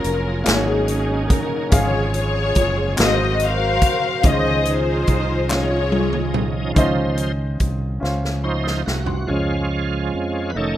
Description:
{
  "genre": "slow gospel",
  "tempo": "48 BPM (dotted quarters)",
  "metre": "6/8",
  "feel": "straight",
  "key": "Db major",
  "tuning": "A4 = 443 Hz",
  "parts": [
    { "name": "warm studio string section", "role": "melody", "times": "0.0-6.7 s", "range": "Db4 to F5", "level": "-21 LUFS", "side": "left 2 dB", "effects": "none" },
    { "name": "warm upright piano", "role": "accompaniment", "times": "0.0-10.8 s", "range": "Ab2 to Eb6", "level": "-26 LUFS", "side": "left 1 dB", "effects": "none" },
    { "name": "bright tonewheel organ", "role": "sustained chords", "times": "0.0-10.8 s", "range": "Eb3 to F5", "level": "-27 LUFS", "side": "right 3 dB", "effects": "slow rotary speaker, overdrive, chorus vibrato" },
    { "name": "fingered electric bass", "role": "bass", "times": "0.0-10.8 s", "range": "F1 to F2", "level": "-23 LUFS", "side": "equal", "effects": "none" },
    { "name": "swinging big-band drum kit", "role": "drums", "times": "0.0-9.3 s", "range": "hi-hat, kick drum, snare drum, toms", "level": "-21 LUFS", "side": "equal", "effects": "none" },
    { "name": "group handclap", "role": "percussion", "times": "0.5-5.9 s", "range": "none", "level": "-25 LUFS", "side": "left 2 dB", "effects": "none" }
  ],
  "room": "small room ambience",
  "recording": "rough home demo mix",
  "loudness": "-17 LUFS",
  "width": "side -12 dB against mid",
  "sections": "0.0-6.8 A section; 6.8-9.3 B section; 9.3-10.8 C section",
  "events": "drum fill 5.5-6.8, 8.0-9.3; tonewheel organ solo 6.8-9.3, 9.3-10.8",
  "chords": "0.5 Ab9sus4; 1.7 Db/Ab; 3.0 Ab13; 4.2 Dbmaj9; 9.3 Db"
}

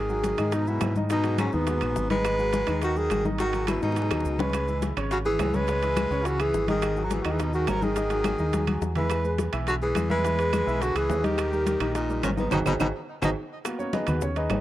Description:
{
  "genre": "Afro-Cuban jazz",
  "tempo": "210 BPM",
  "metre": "4/4",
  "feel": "straight",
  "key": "G# minor",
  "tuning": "A4 = 440 Hz",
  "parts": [
    { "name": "warm tenor saxophone", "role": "melody", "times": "0.0-13.3 s", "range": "B3 to B4", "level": "-28 LUFS", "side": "right 1 dB", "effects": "tape echo" },
    { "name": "clear baritone saxophone", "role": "second line", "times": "0.0-13.3 s", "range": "G#2 to G#3", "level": "-33 LUFS", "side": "left 5 dB", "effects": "none" },
    { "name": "deep dub fingered electric bass", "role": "bass", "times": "0.0-14.6 s", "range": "G#1 to G#2", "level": "-29 LUFS", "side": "equal", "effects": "none" },
    { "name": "clear upright piano", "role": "accompaniment", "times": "0.1-14.6 s", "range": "C#3 to E5", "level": "-32 LUFS", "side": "equal", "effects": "none" },
    { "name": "congas", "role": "percussion", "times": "0.1-14.6 s", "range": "none", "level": "-32 LUFS", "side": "left 2 dB", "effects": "none" },
    { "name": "maracas", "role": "percussion", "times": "0.1-14.6 s", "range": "none", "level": "-46 LUFS", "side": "right 13 dB", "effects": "none" },
    { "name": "bongos", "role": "percussion", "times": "0.2-14.6 s", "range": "none", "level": "-35 LUFS", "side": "left 7 dB", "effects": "none" },
    { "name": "timbales", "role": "percussion", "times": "0.2-14.6 s", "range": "none", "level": "-36 LUFS", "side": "right 8 dB", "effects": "none" },
    { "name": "claves", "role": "percussion", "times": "0.4-14.6 s", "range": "none", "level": "-37 LUFS", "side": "right 10 dB", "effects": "none" }
  ],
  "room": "little or no reverb",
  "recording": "dry, close 1970s-style studio recording",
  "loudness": "-23 LUFS",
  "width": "side -14 dB against mid",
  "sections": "0.0-13.7 A section",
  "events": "drum fill 3.8-4.5, 8.5-9.1, 12.5-13.7; band accent 12.5-13.7",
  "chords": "0.0 G#m7; 4.5 C#m7; 6.8 G#5; 9.1 E; 11.4 D#; 12.5 G#7(no3); 13.7 G#m7"
}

